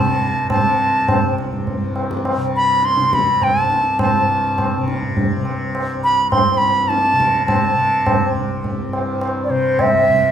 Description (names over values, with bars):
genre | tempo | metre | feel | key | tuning
indian classical, Hindustani | 103 BPM | 3/4 | straight | C raga bilaval | A4 = 440 Hz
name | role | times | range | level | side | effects
bright reedy bansuri | melody | 0.0-10.3 s | C5 to C6 | -16 LUFS | right 1 dB | none
tanpura | drone | 0.0-10.3 s | C2 to C3 | -23 LUFS | left 2 dB | none
tabla | percussion | 0.2-10.3 s | none | -20 LUFS | right 1 dB | none
room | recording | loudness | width
moderate recital hall reverb, RT60 1.6 s | minimal, uncompressed stereo recording | -15 LUFS | side -9 dB against mid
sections
0.0-10.3 A section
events
none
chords
none